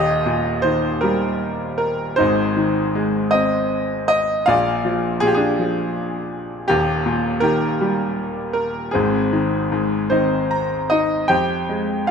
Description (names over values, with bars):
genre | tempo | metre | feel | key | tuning
classical, lyrical solo piano | 52 BPM (dotted quarters) | 6/8 | rubato | Ab major | A4 = 440 Hz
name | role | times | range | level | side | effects
bright grand piano | solo | 0.0-12.1 s | Eb1 to Bb5 | -17 LUFS | equal | none
room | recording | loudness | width
moderate scoring stage reverb, RT60 1.8 s | minimal, uncompressed stereo recording | -17 LUFS | side -6 dB against mid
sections
0.0-11.3 A section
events
grand piano fill 10.1-11.3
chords
0.0 Eb; 2.2 Ab; 4.5 Bb7; 6.7 Eb; 8.9 Ab; 11.3 Fm